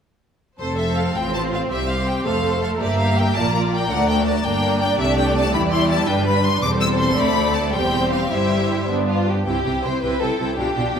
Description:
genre	quick classical-period movement for string orchestra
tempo	109 BPM (dotted quarters)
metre	6/8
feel	rubato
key	F major, C major from 5.0 s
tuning	A4 = 440 Hz
part	clear studio violin section	melody	0.6-11.0 s	C5 to E6	-25 LUFS	left 4 dB	none
part	rich studio violin section	second line	0.6-11.0 s	D4 to E5	-24 LUFS	left 1 dB	none
part	clear studio viola section	accompaniment	0.6-11.0 s	G3 to A4	-23 LUFS	right 1 dB	none
part	dark studio double bass section	bass	0.6-11.0 s	E1 to E2	-25 LUFS	right 1 dB	none
part	rich studio cello section	bass	0.6-11.0 s	C2 to E3	-25 LUFS	equal	none
room	wet scoring stage reverb, RT60 1.6 s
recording	minimal, uncompressed stereo recording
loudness	-17 LUFS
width	side -7 dB against mid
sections	0.6-9.5 A section; 9.5-11.0 B section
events	none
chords	0.6 F; 1.7 C5; 2.3 F; 2.8 Gm7; 3.9 D5; 4.4 Gm; 5.0 C; 6.1 G; 6.6 C/E; 7.2 D5; 7.7 C/E; 8.3 C/G; 8.9 G; 9.5 C

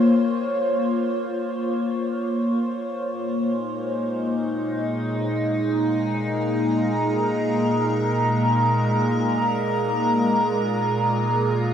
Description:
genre	ambient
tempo	free time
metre	none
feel	none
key	unclear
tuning	A4 = 443 Hz
part	evolving wavetable pad	solo	0.0-11.7 s	Bb2 to Bb5	-20 LUFS	equal	chorus, built-in reverb, phaser, tape echo
room	wet huge ambient reverb, RT60 9.0 s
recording	small room reverb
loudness	-20 LUFS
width	side -8 dB against mid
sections	0.0-11.7 A section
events	none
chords	0.0 Bbmadd9; 2.9 Absus2/Bb

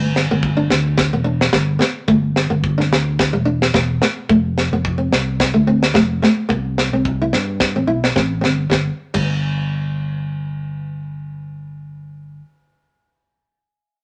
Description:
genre	highlife guitar band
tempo	108 BPM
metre	4/4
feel	swing 55% on 16ths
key	G mixolydian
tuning	A4 = 441 Hz
part	nylon-string guitar	accompaniment	0.0-9.2 s	G3 to E4	-20 LUFS	equal	none
part	fingered electric bass	bass	0.0-12.4 s	E1 to G2	-23 LUFS	equal	none
part	tight funk drum kit	drums	0.2-9.3 s	crash cymbal, kick drum, snare drum	-21 LUFS	equal	none
room	light reverb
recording	none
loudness	-18 LUFS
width	mono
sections	0.0-8.7 A section; 8.7-10.9 B section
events	none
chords	0.0 G; 4.3 F; 6.5 C; 8.7 N.C.

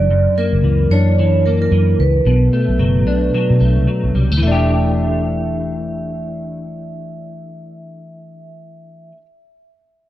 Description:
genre	indie pop, bedroom pop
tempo	111 BPM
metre	4/4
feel	swing 60% on 16ths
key	E minor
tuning	A4 = 440 Hz
part	vibraphone with medium mallets	melody	0.0-9.1 s	A#4 to E5	-22 LUFS	right 4 dB	lush chorus, analog delay
part	clean electric guitar	accompaniment	0.0-9.2 s	F#2 to G4	-19 LUFS	left 2 dB	ensemble chorus, warbly pitch drift
part	vintage muted fingered electric bass	bass	0.0-9.1 s	E1 to B2	-16 LUFS	equal	none
room	light reverb, small room ambience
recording	cassette tape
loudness	-13 LUFS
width	side -14 dB against mid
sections	0.0-4.4 A section; 4.4-8.8 B section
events	none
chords	0.0 F#7b13; 2.3 Bm7; 4.4 Em7

